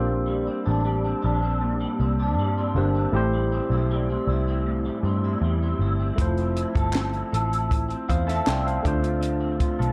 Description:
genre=indie pop, bedroom pop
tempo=79 BPM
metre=4/4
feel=straight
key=unclear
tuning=A4 = 440 Hz
part: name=barky tine electric piano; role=accompaniment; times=0.0-9.9 s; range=A3 to A5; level=-31 LUFS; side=equal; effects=cassette tape
part: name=electric guitar through a small old amp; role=accompaniment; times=0.0-9.9 s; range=A2 to A4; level=-30 LUFS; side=equal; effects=ensemble chorus, vibrato effect
part: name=vintage muted picked electric bass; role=bass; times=0.0-9.9 s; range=F1 to G2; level=-27 LUFS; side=equal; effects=none
part: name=compact cocktail drum kit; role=drums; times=6.2-9.9 s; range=hi-hat, kick drum, snare drum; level=-28 LUFS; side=equal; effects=none
part: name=group handclap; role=percussion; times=6.9-8.6 s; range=none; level=-40 LUFS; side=equal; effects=none
room=light reverb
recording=dark, warm production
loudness=-24 LUFS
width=mono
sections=0.0-9.9 A section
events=none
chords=0.0 Bb69; 3.1 Am7; 6.2 Fmaj7; 8.8 Dm7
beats=| 0.10 0.86 1.62 2.38 | 3.14 3.90 4.66 5.42 | 6.19 6.95 7.71 8.47 | 9.23

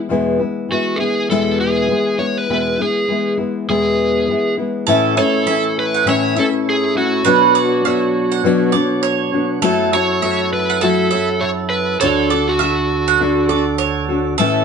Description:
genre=pop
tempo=101 BPM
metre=4/4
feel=swing 60% on 16ths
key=A major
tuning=A4 = 436 Hz
part: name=nylon-string guitar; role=accompaniment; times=0.0-14.6 s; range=E2 to C#5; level=-17 LUFS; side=left 3 dB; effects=none
part: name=overdriven slide guitar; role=melody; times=0.7-13.6 s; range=F#4 to C#5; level=-19 LUFS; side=right 2 dB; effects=none
part: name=tonewheel organ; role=sustained chords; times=4.9-14.6 s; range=D2 to C#5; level=-23 LUFS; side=right 4 dB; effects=overdrive
part: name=bowl-back mandolin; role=arpeggios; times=4.9-14.6 s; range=A4 to F#5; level=-18 LUFS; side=right 9 dB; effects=none
room=light reverb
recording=band playing live in one room, nothing above 10.4 kHz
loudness=-14 LUFS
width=side -6 dB against mid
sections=0.0-4.9 A section; 4.9-14.6 B section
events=none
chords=0.0 E; 4.9 A; 7.3 Bmadd9; 9.6 F#m7; 12.0 D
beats=| 0.12 0.71 1.31 1.90 | 2.50 3.09 3.69 4.28 | 4.88 5.47 6.07 6.66 | 7.26 7.85 8.45 9.04 | 9.64 10.23 10.82 11.42 | 12.01 12.61 13.20 13.79 | 14.39

